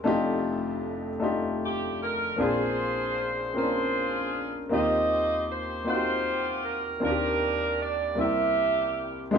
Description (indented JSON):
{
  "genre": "gospel",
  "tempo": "52 BPM (dotted quarters)",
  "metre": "6/8",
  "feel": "straight",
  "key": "Eb major",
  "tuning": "A4 = 440 Hz",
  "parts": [
    { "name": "clear saxophone section", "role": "melody", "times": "0.0-9.3 s", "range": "D4 to E5", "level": "-27 LUFS", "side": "right 2 dB", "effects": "none" },
    { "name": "warm grand piano", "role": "accompaniment", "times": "0.0-9.4 s", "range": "F1 to Bb4", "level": "-28 LUFS", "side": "left 1 dB", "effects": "none" }
  ],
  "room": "moderate large studio reverb, RT60 0.8 s",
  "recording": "band playing live in one room",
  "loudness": "-25 LUFS",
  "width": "side -7 dB against mid",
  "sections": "0.0-9.4 A section",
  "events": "none",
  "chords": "0.1 F13; 2.4 Bb9; 4.7 Eb69; 7.0 Cm9/Eb; 8.2 C7",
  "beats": "| 0.06 1.22 | 2.38 3.54 | 4.70 5.86 | 7.02 8.18 | 9.34"
}